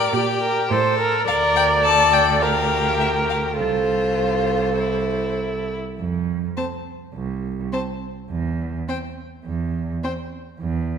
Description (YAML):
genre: quick classical-period movement for string quartet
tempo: 104 BPM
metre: 4/4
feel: straight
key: F major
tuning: A4 = 440 Hz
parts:
  - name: rich violin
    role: melody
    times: 0.0-10.1 s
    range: C5 to A5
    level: -24 LUFS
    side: left 10 dB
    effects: none
  - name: rich violin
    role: second line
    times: 0.0-10.1 s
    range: E4 to C5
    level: -25 LUFS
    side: left 2 dB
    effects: none
  - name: warm viola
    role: accompaniment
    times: 0.0-10.1 s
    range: C4 to D5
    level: -22 LUFS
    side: right 2 dB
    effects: none
  - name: clear cello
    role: bass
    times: 0.0-11.0 s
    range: C2 to Bb2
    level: -25 LUFS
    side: right 4 dB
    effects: none
room: wet scoring stage reverb, RT60 1.7 s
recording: none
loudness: -19 LUFS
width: side -7 dB against mid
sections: 0.0-6.0 A section; 6.0-11.0 B section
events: none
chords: 0.0 Gm; 1.3 Bb/D; 2.4 Gm7/D; 3.6 F/C; 6.0 F5; 8.3 N.C.